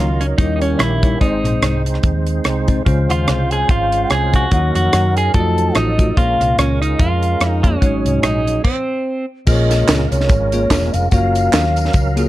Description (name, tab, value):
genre	uptempo gospel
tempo	145 BPM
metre	4/4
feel	swing 56% on 8ths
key	unclear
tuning	A4 = 440 Hz
part	clean electric guitar	melody	0.0-9.2 s	C4 to A4	-21 LUFS	right 2 dB	none
part	bell-like tine electric piano	accompaniment	0.0-12.3 s	Ab2 to Eb5	-21 LUFS	left 2 dB	none
part	percussive tonewheel organ	sustained chords	0.0-12.3 s	Eb3 to F5	-24 LUFS	right 4 dB	slow rotary speaker, overdrive, chorus vibrato
part	hollow-body short-scale fingered electric bass	bass	0.0-12.3 s	Fb1 to Gb2	-18 LUFS	equal	none
part	mellow hollow bass bansuri	melody	0.2-12.3 s	C5 to A5	-22 LUFS	left 2 dB	none
part	tight funk drum kit	drums	0.2-12.3 s	crash cymbal, hi-hat, kick drum, rim click, snare drum	-17 LUFS	equal	none
part	tambourine and handclaps	percussion	9.5-12.3 s	none	-28 LUFS	right 3 dB	none
room	small room ambience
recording	dark, warm production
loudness	-13 LUFS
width	side -15 dB against mid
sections	0.0-9.5 A section; 9.5-12.3 B section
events	stop 8.6-9.5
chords	0.4 Eb7b9; 1.2 Ab; 2.9 Dbmaj7; 4.5 Ebm7; 5.3 F7b9; 6.2 Bbm7; 7.8 Ab7sus4; 8.6 N.C.; 9.5 Bbm7; 11.1 Gbmaj7